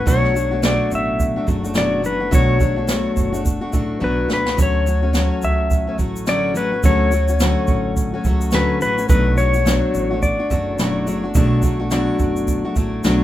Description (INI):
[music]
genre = acoustic pop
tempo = 106 BPM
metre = 4/4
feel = swing 60% on 16ths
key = unclear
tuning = A4 = 438 Hz
[part]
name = clean lap steel guitar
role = melody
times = 0.0-13.0 s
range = B4 to E5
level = -22 LUFS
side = left 3 dB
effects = none
[part]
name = picked steel-string acoustic guitar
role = accompaniment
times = 0.0-13.2 s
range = B2 to F#4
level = -21 LUFS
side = left 2 dB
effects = none
[part]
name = upright bass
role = bass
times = 0.0-13.2 s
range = F#1 to D2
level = -22 LUFS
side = right 1 dB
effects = none
[part]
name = jazz brush drum kit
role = drums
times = 0.1-13.2 s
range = kick drum, shaker, snare drum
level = -20 LUFS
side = right 2 dB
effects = none
[sound]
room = moderate studio reverb, RT60 0.6 s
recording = minimal, uncompressed stereo recording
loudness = -16 LUFS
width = side -13 dB against mid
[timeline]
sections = 0.0-13.2 A section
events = drum fill 4.0-4.6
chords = 0.1 Bm7; 4.6 Dmaj7; 9.1 Bm7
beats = | 0.07 0.64 1.20 1.76 | 2.33 2.89 3.46 4.02 | 4.58 5.15 5.71 6.28 | 6.84 7.40 7.97 8.53 | 9.10 9.66 10.22 10.79 | 11.35 11.91 12.48 13.04